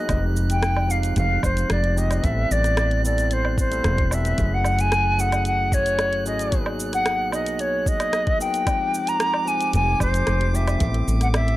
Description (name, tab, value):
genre	sunset chillout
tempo	112 BPM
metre	4/4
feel	straight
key	unclear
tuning	A4 = 440 Hz
part	silver concert flute	melody	0.0-11.6 s	C5 to A#5	-23 LUFS	equal	vintage 12-bit sampler grit, tape echo
part	overdriven tine electric piano	accompaniment	0.0-11.6 s	F3 to A4	-29 LUFS	equal	auto-pan, vintage 12-bit sampler grit, low-pass filter
part	woody fretless electric bass	bass	0.0-11.6 s	E1 to B1	-22 LUFS	equal	none
part	drifting glass-harmonics texture	texture	0.0-11.6 s	D6 to F#6	-37 LUFS	right 4 dB	chorus, built-in reverb
part	electronic kick drum	drums	0.1-10.9 s	none	-24 LUFS	equal	none
part	smooth R&B drum kit	drums	0.1-11.6 s	cabasa, hi-hat, rim click, woodblock	-29 LUFS	right 1 dB	none
room	little or no reverb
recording	dry, gritty hardware recording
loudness	-19 LUFS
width	side -16 dB against mid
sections	0.0-11.6 A section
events	none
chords	0.1 Fm9; 2.2 Am9; 4.4 F#m9; 6.5 G#m9; 8.7 Fm9; 10.8 Am9